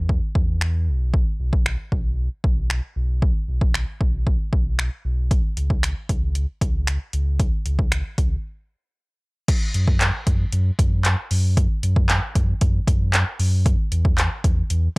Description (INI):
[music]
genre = dance-pop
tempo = 115 BPM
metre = 4/4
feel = straight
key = unclear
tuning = A4 = 440 Hz
[part]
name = sub bass with octave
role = bass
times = 0.0-14.9 s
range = B1 to F#2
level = -21 LUFS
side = equal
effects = sidechain pumping
[part]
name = deep house drum kit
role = drums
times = 0.1-14.8 s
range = crash cymbal, finger snaps, handclaps, hi-hat, kick drum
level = -20 LUFS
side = equal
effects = overdrive
[sound]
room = little or no reverb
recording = dry, gritty hardware recording, transformer saturation, cassette tape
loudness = -19 LUFS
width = side -28 dB against mid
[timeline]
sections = 0.0-9.5 A section; 9.5-15.0 B section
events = break 8.4-9.5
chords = none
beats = 0.09 0.61 | 1.14 1.66 2.18 2.70 | 3.22 3.75 4.27 4.79 | 5.31 5.83 6.35 6.88 | 7.40 7.92 8.44 8.96 | 9.48 10.01 10.53 11.05 | 11.57 12.09 12.62 13.14 | 13.66 14.18 14.70